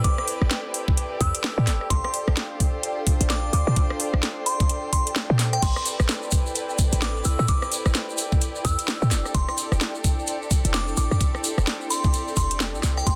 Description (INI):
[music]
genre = UK garage, two-step garage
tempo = 129 BPM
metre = 4/4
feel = swing 60% on 16ths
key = unclear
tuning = A4 = 441 Hz
[part]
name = glassy synth bell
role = melody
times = 0.0-13.2 s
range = G5 to E6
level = -33 LUFS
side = equal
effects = chorus, dub echo
[part]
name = warm studio violin section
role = sustained chords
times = 0.0-13.2 s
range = C4 to C5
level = -37 LUFS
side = equal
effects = sidechain pumping
[part]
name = short 808-style bass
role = bass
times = 0.0-13.2 s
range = F1 to Bb2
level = -25 LUFS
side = equal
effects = sidechain pumping
[part]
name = electronic kick drum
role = drums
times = 0.0-13.2 s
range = none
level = -25 LUFS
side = equal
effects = small room reverb
[part]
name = garage drum kit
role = drums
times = 0.0-13.2 s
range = crash cymbal, hi-hat, rim click, snare drum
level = -30 LUFS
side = equal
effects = small room reverb, soft clipping on snare
[part]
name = ethereal airy pad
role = texture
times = 0.0-13.2 s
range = E4 to G5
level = -37 LUFS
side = equal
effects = ensemble chorus, built-in reverb, sidechain pumping
[part]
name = tube shaker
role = percussion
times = 5.6-13.2 s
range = none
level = -36 LUFS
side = equal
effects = none
[sound]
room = light reverb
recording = dense, heavily limited modern master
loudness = -24 LUFS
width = mono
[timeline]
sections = 0.0-13.2 A section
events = kick drops out 5.2-5.6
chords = 0.0 Am7; 1.9 Bb6; 5.6 Am7; 9.1 F6